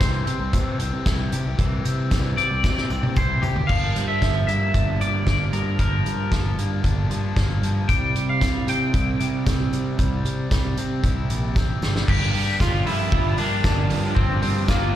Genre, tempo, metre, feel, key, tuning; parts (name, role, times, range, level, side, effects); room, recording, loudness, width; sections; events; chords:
indie rock; 114 BPM; 4/4; straight; G dorian; A4 = 440 Hz
twangy electric guitar; melody; 0.0-15.0 s; Bb3 to G5; -26 LUFS; left 2 dB; wide subtle chorus, slapback echo
biting overdriven guitar; riff; 0.0-15.0 s; E3 to G4; -32 LUFS; left 6 dB
raw garage guitar; riff; 0.0-15.0 s; G2 to F4; -30 LUFS; right 7 dB; overdrive, analog chorus, slapback echo
fuzz fingered electric bass; bass; 0.0-14.9 s; G1 to C3; -24 LUFS; equal; overdrive
loose indie drum kit; drums; 0.0-14.8 s; crash cymbal, hi-hat, kick drum, snare drum, toms; -23 LUFS; equal
tambourine; percussion; 0.0-3.6, 7.9-14.8 s; -46 LUFS; right 2 dB
small room ambience; live gig heard through the venue's PA, recital hall reverb; -19 LUFS; side -12 dB against mid
0.0-3.7 A section; 3.7-12.1 B section; 12.1-15.0 C section
clean electric guitar solo 0.0-3.7; drum fill 2.6-3.7, 11.6-12.1
0.0 C; 3.7 Gm7; 7.9 C; 12.1 Gm7